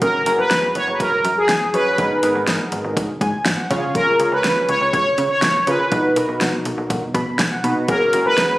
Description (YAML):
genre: synth-pop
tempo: 122 BPM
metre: 4/4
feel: straight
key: F# major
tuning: A4 = 440 Hz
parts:
  - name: analog synth brass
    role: melody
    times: 0.0-8.6 s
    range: G#4 to C#5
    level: -17 LUFS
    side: equal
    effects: chorus, slapback echo
  - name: warm analog keys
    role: accompaniment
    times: 0.0-8.6 s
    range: G#3 to B5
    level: -23 LUFS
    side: equal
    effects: chorus, phaser
  - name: slap-like FM bass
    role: bass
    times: 0.0-8.5 s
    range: F#1 to C#3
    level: -25 LUFS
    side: equal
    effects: none
  - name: deep house drum kit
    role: drums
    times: 0.0-8.5 s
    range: hi-hat, kick drum, snare drum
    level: -22 LUFS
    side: equal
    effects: none
room: moderate digital room reverb, RT60 1.1 s, digital ambience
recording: recorded on a phone in the room, studio reverb, compression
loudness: -16 LUFS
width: side -17 dB against mid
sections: 0.0-8.6 A section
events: synth keys fill 3.0-4.0, 6.9-7.9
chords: 0.0 F#add9; 2.0 G#madd9; 3.7 C#; 5.9 B; 7.9 F#add9